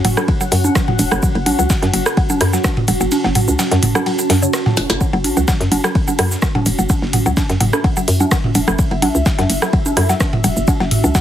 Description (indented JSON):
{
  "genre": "minimal techno",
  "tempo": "127 BPM",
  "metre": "4/4",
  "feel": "swing 53% on 16ths",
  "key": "F# minor",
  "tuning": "A4 = 440 Hz",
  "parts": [
    { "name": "mallet-like synth pluck", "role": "riff", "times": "0.0-11.2 s", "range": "C#3 to F#4", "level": "-22 LUFS", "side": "left 1 dB", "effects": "chorus, sidechain pumping, ping-pong delay" },
    { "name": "hollow knocking FM bass", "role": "bass", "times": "0.0-11.1 s", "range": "E1 to F#2", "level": "-18 LUFS", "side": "equal", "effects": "sidechain pumping" },
    { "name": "breakbeat sampler-style drum kit", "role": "drums", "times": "0.0-11.2 s", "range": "hi-hat, ride cymbal, snare drum", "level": "-29 LUFS", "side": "right 1 dB", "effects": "sidechain pumping on cymbals, high-pass filter on cymbals, studio ambience, high-pass filter on snare, sidechain pumping on hats, high-pass filter on hats" },
    { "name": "minimal click drum kit", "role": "drums", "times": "0.0-11.2 s", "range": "hi-hat, rim click, shaker, snare drum", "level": "-22 LUFS", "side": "equal", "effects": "overdrive, studio ambience" },
    { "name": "booming analog drum machine", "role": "percussion", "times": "0.0-11.1 s", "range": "congas, rim click, toms", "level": "-19 LUFS", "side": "right 1 dB", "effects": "studio ambience, digital delay" },
    { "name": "deep dark ambient pad", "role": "texture", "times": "0.0-11.2 s", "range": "C#4 to A5", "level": "-23 LUFS", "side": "equal", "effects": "chorus, built-in reverb, sidechain pumping" },
    { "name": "electronic kick drum", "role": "drums", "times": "0.3-11.2 s", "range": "none", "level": "-17 LUFS", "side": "equal", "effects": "overdrive, studio ambience" }
  ],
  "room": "light reverb",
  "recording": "heavily compressed radio sound",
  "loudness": "-13 LUFS",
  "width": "side -11 dB against mid",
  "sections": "0.0-11.2 A section",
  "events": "kick drops out 3.1-5.0; drum fill 4.8",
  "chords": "0.0 F#5",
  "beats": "0.28 0.76 | 1.23 1.70 2.17 2.65 | 3.12 3.59 4.06 4.54 | 5.01 5.48 5.95 6.42 | 6.90 7.37 7.84 8.31 | 8.79 9.26 9.73 10.20 | 10.68 11.15"
}